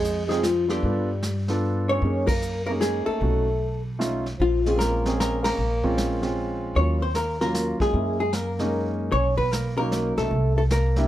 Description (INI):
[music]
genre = jazz, small-group swing and bop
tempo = 152 BPM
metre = 3/4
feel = swing 65% on 8ths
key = Bb minor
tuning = A4 = 439 Hz
[part]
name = hollow-body jazz guitar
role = melody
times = 0.0-11.1 s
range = F4 to Db5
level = -26 LUFS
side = left 2 dB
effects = plate reverb
[part]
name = growling trombone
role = second line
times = 0.0-11.1 s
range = F3 to Db4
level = -30 LUFS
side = right 2 dB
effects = none
[part]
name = upright bass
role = bass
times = 0.0-11.1 s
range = Bb1 to G2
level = -26 LUFS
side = equal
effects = none
[part]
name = vintage brush drum kit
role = drums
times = 0.0-11.1 s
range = brushed snare drum, hi-hat, kick drum, ride cymbal, snare drum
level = -30 LUFS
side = equal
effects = none
[part]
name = warm grand piano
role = accompaniment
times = 0.3-11.1 s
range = Gb3 to A4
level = -27 LUFS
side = right 1 dB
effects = none
[sound]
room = light reverb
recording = none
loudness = -22 LUFS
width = side -13 dB against mid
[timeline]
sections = 0.0-6.8 A section; 6.8-11.1 B section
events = band accent 2.2, 5.4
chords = 0.0 Fm7; 0.8 G9; 2.0 Gb69; 3.2 B9; 4.4 Bbm7; 6.8 Ebm7; 7.9 Gb9; 9.1 Bmaj7; 10.3 C7